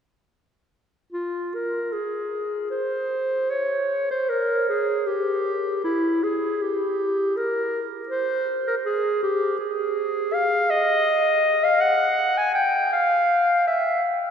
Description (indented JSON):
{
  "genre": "classical, baroque-style fantasia for unaccompanied clarinet",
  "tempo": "80 BPM",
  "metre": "3/4",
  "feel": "rubato",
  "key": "F minor",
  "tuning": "A4 = 440 Hz",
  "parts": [
    { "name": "warm clarinet", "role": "solo", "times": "1.1-14.0 s", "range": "E4 to Ab5", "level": "-20 LUFS", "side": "equal", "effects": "none" }
  ],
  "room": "wet cathedral reverb, RT60 5.6 s",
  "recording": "heard from further back in the room",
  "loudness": "-20 LUFS",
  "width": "side -7 dB against mid",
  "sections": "1.1-14.3 A section",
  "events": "none",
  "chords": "none"
}